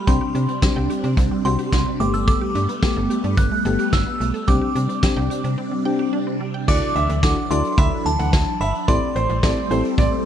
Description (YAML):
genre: synth-pop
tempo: 109 BPM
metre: 4/4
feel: straight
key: D mixolydian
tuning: A4 = 440 Hz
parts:
  - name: glassy synth bell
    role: melody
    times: 0.0-10.3 s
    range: A5 to F#6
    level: -26 LUFS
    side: right 2 dB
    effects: chorus, tape echo
  - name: phased string machine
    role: sustained chords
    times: 0.0-10.3 s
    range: C3 to D4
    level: -26 LUFS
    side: right 1 dB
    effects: ensemble chorus, phaser
  - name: resonant blip pluck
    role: arpeggios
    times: 0.0-6.6 s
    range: G3 to G5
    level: -30 LUFS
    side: right 5 dB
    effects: chorus, tape echo
  - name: FM electric piano with tremolo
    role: accompaniment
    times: 0.1-10.3 s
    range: A3 to A4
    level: -26 LUFS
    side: left 6 dB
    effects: none
  - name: slap-like FM bass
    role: bass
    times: 0.1-10.1 s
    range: G1 to C3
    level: -22 LUFS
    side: equal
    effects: none
  - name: vintage brush drum kit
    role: drums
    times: 0.1-10.1 s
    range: crash cymbal, hi-hat, kick drum, snare drum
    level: -20 LUFS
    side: equal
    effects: none
  - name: clear baby grand piano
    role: second line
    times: 6.7-10.1 s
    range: C5 to F#5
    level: -27 LUFS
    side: right 5 dB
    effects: tape echo
room: light reverb, studio ambience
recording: dark, warm production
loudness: -18 LUFS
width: side -9 dB against mid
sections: 0.0-6.7 A section; 6.7-10.3 B section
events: break 5.6-6.7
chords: 0.1 Csus2; 2.0 Gadd9; 4.5 Csus2; 6.7 Dadd9; 8.9 Am7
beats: | 0.07 0.63 1.18 1.73 | 2.28 2.83 3.38 3.93 | 4.48 5.03 5.58 6.13 | 6.68 7.23 7.78 8.33 | 8.88 9.43 9.98